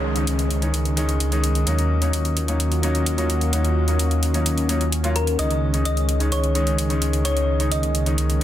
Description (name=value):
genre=EDM, festival progressive house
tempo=129 BPM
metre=4/4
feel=straight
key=Db major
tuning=A4 = 440 Hz
part: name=thumb-piano-like synth pluck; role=melody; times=0.0-1.4, 5.2-8.1 s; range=Bb4 to Eb5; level=-27 LUFS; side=left 1 dB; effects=chorus, dub echo
part: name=clear concert grand piano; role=accompaniment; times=0.0-8.4 s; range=Eb3 to F4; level=-26 LUFS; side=left 2 dB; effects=dub echo
part: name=lush unison pad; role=sustained chords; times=0.0-8.4 s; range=Eb3 to Gb4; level=-27 LUFS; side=equal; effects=chorus
part: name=wide detuned saw bass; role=bass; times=0.0-8.4 s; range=Db2 to Eb2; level=-21 LUFS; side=equal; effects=chorus
part: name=downlifter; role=sound effects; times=0.0-1.7 s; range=none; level=-35 LUFS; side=equal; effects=none
part: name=electronic hi-hat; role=drums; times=0.2-8.4 s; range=none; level=-27 LUFS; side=equal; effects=none
room=light reverb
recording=dense, heavily limited modern master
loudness=-19 LUFS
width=side -12 dB against mid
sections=0.0-8.4 A section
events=filter sweep on analog synth pad 0.0-8.4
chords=0.0 Dbsus2; 1.7 Ebm7; 5.4 Dbsus2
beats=0.27 0.74 1.20 | 1.67 2.13 2.60 3.06 | 3.53 4.00 4.46 4.92 | 5.39 5.86 6.32 6.79 | 7.25 7.71 8.18